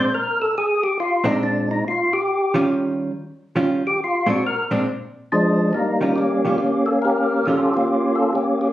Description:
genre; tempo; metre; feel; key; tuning
jazz; 139 BPM; 4/4; swing 65% on 8ths; Eb mixolydian; A4 = 440 Hz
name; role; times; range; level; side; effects
percussive tonewheel organ; melody; 0.0-8.7 s; F3 to C5; -18 LUFS; equal; overdrive, chorus vibrato, slow rotary speaker
hollow-body jazz guitar; accompaniment; 0.0-7.7 s; Bb2 to F4; -21 LUFS; right 1 dB; none
room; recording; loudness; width
wet studio ambience, RT60 0.5 s; recorded on a phone in the room, studio reverb, compression; -18 LUFS; side -14 dB against mid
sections
0.0-5.7 A section; 5.7-8.7 B section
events
tonewheel organ solo 0.0-5.7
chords
0.0 Bb9; 2.3 Eb9; 4.0 Bb9; 5.7 Eb9

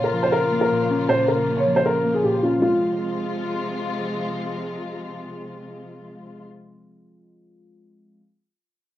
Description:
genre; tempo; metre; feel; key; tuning
hip hop; 157 BPM; 4/4; half-time; F minor; A4 = 440 Hz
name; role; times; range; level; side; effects
dark concert grand piano; melody; 0.0-3.7 s; F4 to Db5; -20 LUFS; equal; cassette tape
muted felt-like synth keys; accompaniment; 0.0-8.2 s; Bb2 to F4; -28 LUFS; left 1 dB; chorus, phaser, cassette tape
dark symphonic string section; sustained chords; 0.0-6.4 s; C3 to F4; -28 LUFS; left 1 dB; cassette tape
room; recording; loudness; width
light reverb, digital ambience; home recording on cassette, nothing above 8.0 kHz; -20 LUFS; side -13 dB against mid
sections
0.0-2.6 A section; 2.6-5.7 B section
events
none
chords
0.0 Bbm; 2.6 Fm

